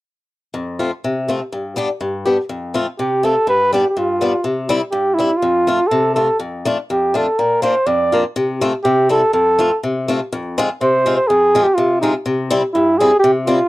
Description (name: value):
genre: alpine folk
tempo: 123 BPM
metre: 2/4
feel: straight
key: F major, F minor from 10.3 s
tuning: A4 = 440 Hz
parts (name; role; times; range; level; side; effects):
- picked swing-style acoustic guitar; accompaniment; 0.5-13.6 s; F2 to G4; -19 LUFS; left 2 dB; none
- trumpet with bucket mute; melody; 3.0-13.7 s; Eb4 to D5; -14 LUFS; right 1 dB; none
room: light reverb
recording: dry, close 1970s-style studio recording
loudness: -14 LUFS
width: side -18 dB against mid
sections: 0.5-2.5 A section; 2.5-10.3 B section; 10.3-13.7 C section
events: none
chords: 0.5 F; 1.5 G; 2.5 F; 3.5 G7; 4.4 C; 5.4 F; 6.4 Dm/F; 7.4 Bb; 8.4 F/C; 8.8 C; 9.3 F; 10.3 Fm; 12.3 C